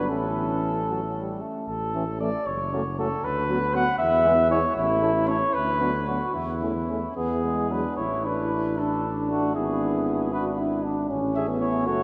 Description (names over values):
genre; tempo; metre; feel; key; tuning
classical, brass quintet; 77 BPM (dotted quarters); 6/8; rubato; A major; A4 = 439 Hz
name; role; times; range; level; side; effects
mellow trumpet; melody; 0.0-12.0 s; E4 to F#5; -28 LUFS; equal; none
mellow flugelhorn; second line; 0.0-12.0 s; A3 to G#4; -36 LUFS; equal; none
bright trombone; accompaniment; 0.0-12.0 s; E3 to F#4; -35 LUFS; equal; none
warm French horn; accompaniment; 0.0-12.0 s; G#3 to E4; -34 LUFS; equal; none
warm bass trombone; bass; 0.0-12.0 s; F#1 to E2; -32 LUFS; equal; none
room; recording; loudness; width
wet church reverb, RT60 2.9 s; none; -25 LUFS; mono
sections
0.0-8.0 A section; 8.0-12.0 B section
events
none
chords
0.1 A; 2.5 F#m; 3.2 Bm/D; 4.0 E; 4.8 A; 5.5 Bm/D; 6.4 A/E; 7.2 E; 8.0 A5; 8.8 D/A; 9.6 E7/G#; 11.1 A